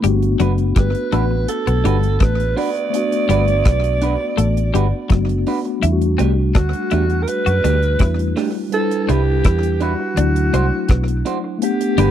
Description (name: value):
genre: lovers rock reggae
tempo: 83 BPM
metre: 4/4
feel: straight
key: G major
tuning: A4 = 442 Hz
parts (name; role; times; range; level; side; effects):
- mellow tine electric piano; accompaniment; 0.0-12.1 s; E3 to F#5; -22 LUFS; left 4 dB; medium stereo tremolo, slapback echo
- twelve-string electric guitar; riff; 0.0-12.1 s; F#3 to F#4; -24 LUFS; left 11 dB; lush chorus
- vintage muted fingered electric bass; bass; 0.0-12.1 s; F#1 to F#2; -18 LUFS; equal; none
- deep reggae drum kit; drums; 0.0-12.1 s; hi-hat, kick drum, rim click; -19 LUFS; equal; none
- electric guitar through a small old amp; stabs; 0.4-12.1 s; A3 to C5; -24 LUFS; right 5 dB; spring reverb
- growling alto saxophone; melody; 0.8-12.1 s; F#4 to D5; -22 LUFS; right 4 dB; tape echo
room: little or no reverb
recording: dry, close 1970s-style studio recording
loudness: -15 LUFS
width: side -10 dB against mid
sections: 0.0-11.6 A section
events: none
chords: 0.0 Gmaj7; 5.8 Em11; 8.7 Cmaj9; 10.2 D7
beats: | 0.04 0.76 1.49 2.21 | 2.93 3.66 4.38 5.10 | 5.83 6.55 7.28 8.00 | 8.72 9.45 10.17 10.89 | 11.62